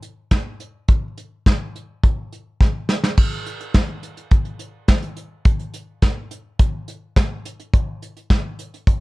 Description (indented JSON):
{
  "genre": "rock",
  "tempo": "105 BPM",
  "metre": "4/4",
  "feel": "straight",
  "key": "none",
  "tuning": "none",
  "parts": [
    { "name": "soft brush drum kit", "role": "drums", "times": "0.0-9.0 s", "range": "crash cymbal, hi-hat, kick drum, snare drum", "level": "-17 LUFS", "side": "equal", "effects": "none" }
  ],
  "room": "little or no reverb",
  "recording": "cassette tape",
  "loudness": "-18 LUFS",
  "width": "side -22 dB against mid",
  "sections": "0.0-3.2 A section; 3.2-9.0 B section",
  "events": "drum fill 2.6-3.2",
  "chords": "none"
}